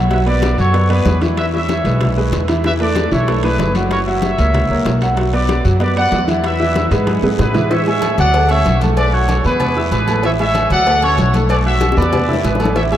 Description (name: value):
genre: latin, salsa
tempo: 190 BPM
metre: 4/4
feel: straight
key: unclear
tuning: A4 = 441 Hz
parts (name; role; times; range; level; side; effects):
- bright upright piano; accompaniment; 0.0-13.0 s; E3 to F#6; -19 LUFS; right 1 dB; none
- upright bass; bass; 0.0-13.0 s; F#1 to A2; -17 LUFS; equal; none
- warm trumpet section; melody; 0.1-13.0 s; G#4 to F#5; -18 LUFS; equal; none
- bongos and cowbell; percussion; 0.1-12.9 s; none; -25 LUFS; left 5 dB; none
- congas; percussion; 0.1-13.0 s; none; -25 LUFS; left 2 dB; none
- guiro; percussion; 0.1-13.0 s; none; -35 LUFS; left 6 dB; none
- timbales and agogo bells; percussion; 0.1-13.0 s; none; -27 LUFS; right 6 dB; none
room: wet cathedral reverb, RT60 6.2 s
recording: in a vast, echoing space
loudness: -13 LUFS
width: side -11 dB against mid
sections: 0.0-7.7 A section; 7.7-13.0 B section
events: drum fill 7.1-7.7, 11.8-12.8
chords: 0.1 Bm; 1.4 E; 2.6 E7sus4; 3.9 F#7; 5.2 Bm; 6.4 E; 7.7 Amaj7; 8.3 D5; 9.0 B5; 9.6 E; 10.2 Amaj7; 10.9 D5; 11.5 B5; 12.1 E7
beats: | 0.11 0.43 0.74 1.06 | 1.38 1.69 2.01 2.33 | 2.64 2.96 3.28 3.59 | 3.91 4.23 4.54 4.86 | 5.18 5.49 5.81 6.12 | 6.44 6.76 7.07 7.39 | 7.71 8.02 8.34 8.65 | 8.97 9.29 9.60 9.92 | 10.23 10.55 10.87 11.18 | 11.50 11.81 12.13 12.45 | 12.76